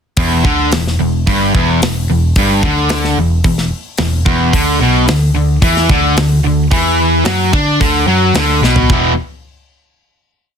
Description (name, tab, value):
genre	hard rock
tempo	110 BPM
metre	4/4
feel	straight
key	unclear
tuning	A4 = 441 Hz
part	cranked stack guitar	riff	0.2-9.1 s	E2 to D4	-15 LUFS	left 11 dB	overdrive
part	distorted electric guitar	riff	0.2-9.1 s	E2 to D4	-16 LUFS	right 11 dB	overdrive
part	overdriven picked electric bass	bass	0.2-9.1 s	E1 to D3	-16 LUFS	equal	none
part	tight metal drum kit	drums	0.2-9.0 s	hi-hat, kick drum, snare drum, toms	-17 LUFS	equal	soft clipping on kick, soft clipping on snare
room	light reverb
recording	dense, heavily limited modern master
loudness	-10 LUFS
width	side -7 dB against mid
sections	0.2-8.9 riff; 8.9-10.6 final chord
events	drum fill 8.6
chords	0.2 Em7; 4.5 Bmadd11; 8.9 E5